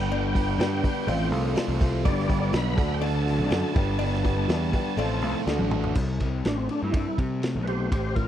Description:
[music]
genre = classic rock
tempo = 123 BPM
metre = 4/4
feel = straight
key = unclear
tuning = A4 = 435 Hz
[part]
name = overdriven tonewheel organ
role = melody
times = 0.0-8.3 s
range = C4 to B5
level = -32 LUFS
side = equal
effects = slow rotary speaker, chorus vibrato, slapback echo
[part]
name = dark upright piano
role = accompaniment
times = 0.0-5.9 s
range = F4 to A5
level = -35 LUFS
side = left 3 dB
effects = none
[part]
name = biting overdriven guitar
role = riff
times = 0.0-6.0 s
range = A2 to C5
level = -31 LUFS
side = right 12 dB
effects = none
[part]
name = raw garage guitar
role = riff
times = 0.0-8.3 s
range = G2 to F#4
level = -31 LUFS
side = left 11 dB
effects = overdrive, spring reverb
[part]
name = fuzz picked electric bass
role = bass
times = 0.0-8.3 s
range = G1 to C3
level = -27 LUFS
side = equal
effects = overdrive
[part]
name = cowbell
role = percussion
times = 0.1-5.6 s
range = none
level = -36 LUFS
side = left 10 dB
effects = none
[part]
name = vintage drum kit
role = drums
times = 0.4-8.3 s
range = crash cymbal, hi-hat, kick drum, ride cymbal, snare drum, toms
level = -28 LUFS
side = equal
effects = none
[sound]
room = small room reverb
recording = dry, close 1970s-style studio recording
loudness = -23 LUFS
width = side -11 dB against mid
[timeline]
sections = 0.0-6.0 A section; 6.0-8.3 B section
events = drum fill 5.5-6.0; tonewheel organ solo 6.0-8.3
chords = 0.0 G; 1.1 F/A; 2.1 G; 2.8 D; 3.8 G; 5.0 F/A; 5.5 D; 6.0 C5

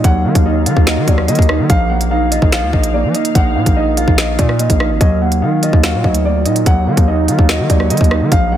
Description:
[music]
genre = hip hop, drill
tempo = 145 BPM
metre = 4/4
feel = half-time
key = Eb harmonic minor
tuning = A4 = 440 Hz
[part]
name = dark concert grand piano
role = melody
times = 0.0-8.6 s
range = D5 to Gb5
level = -20 LUFS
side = equal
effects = digital delay
[part]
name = mellow electric guitar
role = accompaniment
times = 0.0-8.6 s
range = F3 to F5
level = -19 LUFS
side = right 3 dB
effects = none
[part]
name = deep dark ambient pad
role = sustained chords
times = 0.0-8.6 s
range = Gb3 to F5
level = -22 LUFS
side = equal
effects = chorus, built-in reverb
[part]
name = distorted 808-style bass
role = bass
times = 0.0-8.6 s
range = Ab1 to F3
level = -16 LUFS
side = equal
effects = distortion
[part]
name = drill drum kit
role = drums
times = 0.0-8.4 s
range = finger snaps, hi-hat, kick drum, rim click, snare drum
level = -14 LUFS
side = equal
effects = none
[sound]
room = little or no reverb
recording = none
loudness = -11 LUFS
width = side -11 dB against mid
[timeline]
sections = 0.0-8.6 A section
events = none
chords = 0.0 Ebmadd9; 1.7 Bbsus4; 5.0 Ebmadd9

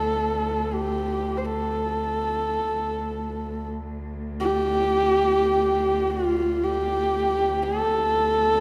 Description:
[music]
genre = mongolian traditional, Mongolian folk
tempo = free time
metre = none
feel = none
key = D yu mode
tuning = A4 = 439 Hz
[part]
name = dark horsehead fiddle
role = melody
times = 0.0-8.6 s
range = F4 to C5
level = -24 LUFS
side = equal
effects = none
[part]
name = rich cello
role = drone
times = 0.0-8.6 s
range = D2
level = -33 LUFS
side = equal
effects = none
[sound]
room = wet concert hall reverb, RT60 2.2 s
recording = recorded in a church or concert hall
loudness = -24 LUFS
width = mono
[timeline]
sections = 0.0-8.6 A section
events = none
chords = none

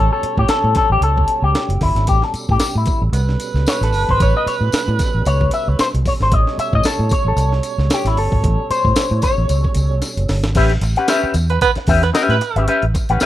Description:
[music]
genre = funk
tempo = 113 BPM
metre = 4/4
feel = swing 56% on 16ths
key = A mixolydian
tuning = A4 = 439 Hz
[part]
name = breathy tenor saxophone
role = second line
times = 0.0-12.7 s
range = B4 to C#5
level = -23 LUFS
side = right 8 dB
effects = plate reverb
[part]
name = electric guitar with an envelope filter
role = accompaniment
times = 0.0-13.3 s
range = C#4 to F#5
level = -19 LUFS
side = left 4 dB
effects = lush chorus, plate reverb
[part]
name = percussive tonewheel organ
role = sustained chords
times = 0.0-10.5 s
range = B2 to A4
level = -31 LUFS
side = right 4 dB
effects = overdrive, chorus vibrato, slow rotary speaker
[part]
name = vintage muted fingered electric bass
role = bass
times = 0.0-13.2 s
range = F#1 to A2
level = -17 LUFS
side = equal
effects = none
[part]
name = breakbeat sampler-style drum kit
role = drums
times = 0.2-13.3 s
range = crash cymbal, hi-hat, kick drum, snare drum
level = -20 LUFS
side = equal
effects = none
[part]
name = tambourine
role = percussion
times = 2.1-13.3 s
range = none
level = -32 LUFS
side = left 3 dB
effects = none
[sound]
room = little or no reverb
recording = rough home demo mix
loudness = -14 LUFS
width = side -13 dB against mid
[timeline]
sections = 0.0-10.6 A section; 10.6-13.3 B section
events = clean electric guitar solo 0.0-10.6; drum fill 10.0-10.6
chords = 0.0 A9

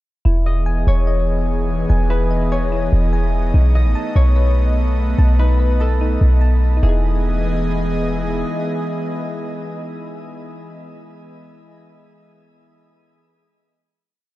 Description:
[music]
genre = hip hop, atmospheric cloud-rap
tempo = 146 BPM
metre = 4/4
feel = half-time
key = E major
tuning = A4 = 440 Hz
[part]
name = airy breathy pad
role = sustained chords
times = 0.5-10.9 s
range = E3 to D#5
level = -24 LUFS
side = equal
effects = chorus
[part]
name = soft electric-piano-like synth keys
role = arpeggios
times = 0.3-11.1 s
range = D#4 to A5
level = -30 LUFS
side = left 2 dB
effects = chorus, low-pass filter, tape echo
[part]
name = clean 808-style bass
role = bass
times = 0.3-8.4 s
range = E1 to B1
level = -15 LUFS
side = equal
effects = none
[part]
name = drifting glass-harmonics texture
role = texture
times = 1.2-10.9 s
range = E3 to D#5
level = -34 LUFS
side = left 2 dB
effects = chorus, built-in reverb
[part]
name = concert harp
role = melody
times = 0.5-9.1 s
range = G#4 to D#5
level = -28 LUFS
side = left 4 dB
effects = low-pass filter, tape echo
[sound]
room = digital ambience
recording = dry, gritty hardware recording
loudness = -15 LUFS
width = side -17 dB against mid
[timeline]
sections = 0.3-6.8 breakdown; 6.8-10.1 final chord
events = none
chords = 0.3 Emaj7; 3.5 B7; 6.8 Emaj7

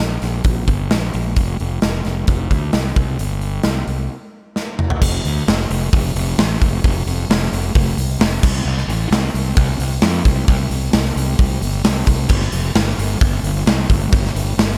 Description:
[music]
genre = classic rock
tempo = 132 BPM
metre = 4/4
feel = straight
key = unclear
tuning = A4 = 440 Hz
[part]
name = fuzz fingered electric bass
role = bass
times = 0.0-14.8 s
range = F1 to F2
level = -22 LUFS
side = equal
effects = overdrive
[part]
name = big rock drum kit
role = drums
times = 0.2-14.8 s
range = crash cymbal, hi-hat, kick drum, snare drum, toms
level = -20 LUFS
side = equal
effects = none
[sound]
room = little or no reverb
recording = none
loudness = -18 LUFS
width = mono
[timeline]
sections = 0.0-5.0 A section; 5.0-14.8 B section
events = break 4.1-5.0; drum fill 4.6-5.0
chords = none

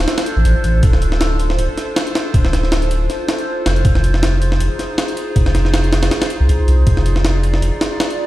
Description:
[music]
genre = drum and bass, jungle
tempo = 159 BPM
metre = 4/4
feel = swing 54% on 16ths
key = D minor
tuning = A4 = 441 Hz
[part]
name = warbly tape-like pad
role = sustained chords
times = 0.0-8.3 s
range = D4 to D5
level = -22 LUFS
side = right 1 dB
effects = chorus, built-in reverb, phaser
[part]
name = saturated sub bass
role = bass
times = 0.0-7.7 s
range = D1 to C2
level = -15 LUFS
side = equal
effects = tube saturation
[part]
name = jungle sampler-style drum kit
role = drums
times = 0.1-8.2 s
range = hi-hat, kick drum, snare drum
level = -18 LUFS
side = equal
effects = none
[sound]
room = light reverb, digital ambience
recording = played on a big sound system in a bare room, stone room reverb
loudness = -13 LUFS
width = side -16 dB against mid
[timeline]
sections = 0.0-8.3 A section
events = none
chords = 0.0 Dm7; 3.9 Fm7

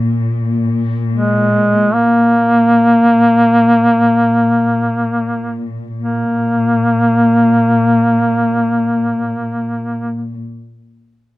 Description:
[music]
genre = caucasian folk, Caucasian lament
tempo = free time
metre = none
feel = none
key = unclear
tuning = A4 = 440 Hz
[part]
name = dark chamber cello section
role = drone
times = 0.0-10.4 s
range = Bb2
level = -19 LUFS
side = left 2 dB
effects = none
[part]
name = warm duduk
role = melody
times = 1.1-10.4 s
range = Ab3 to Bb3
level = -12 LUFS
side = equal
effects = none
[sound]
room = light reverb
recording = dry, close 1970s-style studio recording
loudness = -11 LUFS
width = side -18 dB against mid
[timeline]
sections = 0.0-6.0 A section; 6.0-11.1 B section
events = slowing down 0.0-6.0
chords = none

